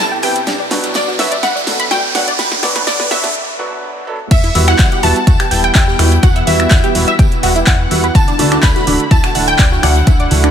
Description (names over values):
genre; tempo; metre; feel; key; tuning
progressive house; 125 BPM; 4/4; straight; E minor; A4 = 440 Hz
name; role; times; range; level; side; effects
wide unison pluck; melody; 0.0-10.5 s; D5 to B5; -19 LUFS; left 1 dB; sidechain pumping, ping-pong delay
shimmering ambient pad; sustained chords; 0.0-10.5 s; C3 to B4; -25 LUFS; right 1 dB; chorus, built-in reverb, vintage 12-bit sampler grit, sidechain pumping
felt-muted upright piano; stabs; 0.0-10.5 s; B2 to A4; -20 LUFS; right 3 dB; sidechain pumping, digital delay
plucky analog bass; bass; 0.0-10.5 s; D1 to E2; -16 LUFS; equal; sidechain pumping, high-pass filter
riser; sound effects; 0.0-3.4 s; none; -20 LUFS; right 3 dB; none
tight sequenced synth; arpeggios; 0.1-10.5 s; D4 to G6; -20 LUFS; equal; chorus, phaser, sidechain pumping, digital delay
pop drum kit; drums; 0.2-10.5 s; crash cymbal, finger snaps, handclaps, hi-hat, snare drum; -19 LUFS; equal; overdrive
soft-mallet drum kit; drums; 0.2-10.4 s; hi-hat, snare drum, tambourine; -26 LUFS; right 1 dB; sidechain pumping on hats, high-pass filter on hats, high-pass filter on snare, sidechain pumping on perc, high-pass filter on perc, high-pass filter on room
soft supersaw; second line; 4.3-10.5 s; E5 to B5; -22 LUFS; left 1 dB; sidechain pumping, digital delay
electronic kick drum; drums; 4.3-10.2 s; none; -11 LUFS; equal; overdrive
room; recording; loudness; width
light reverb; high-pass filter; -10 LUFS; side -8 dB against mid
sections
0.0-4.3 A section; 4.3-10.5 B section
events
build-up 0.0-4.3; drum fill 0.0-3.4; riser 0.0-3.4; break 3.4-4.3; drop 4.3-10.5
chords
0.5 Bm; 4.3 Emadd9; 8.2 Dadd9